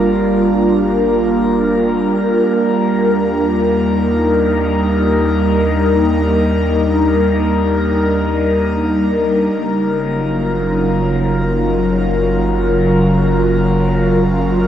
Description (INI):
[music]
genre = ambient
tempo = free time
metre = none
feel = none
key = unclear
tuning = A4 = 440 Hz
[part]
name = airy breathy pad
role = sustained chords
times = 0.0-14.7 s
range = Db3 to Bb4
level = -13 LUFS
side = equal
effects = chorus, phaser, shimmer reverb
[part]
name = warm sub bass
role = bass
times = 0.0-14.7 s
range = Gb1 to Eb2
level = -22 LUFS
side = equal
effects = none
[sound]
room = wet cathedral reverb, RT60 6.8 s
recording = dark, warm production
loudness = -13 LUFS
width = side -10 dB against mid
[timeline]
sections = 0.0-14.7 A section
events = fade-in on sub bass 0.0-14.7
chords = 0.0 Gm7; 2.5 Ebmaj7; 9.5 Gbmaj7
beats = free time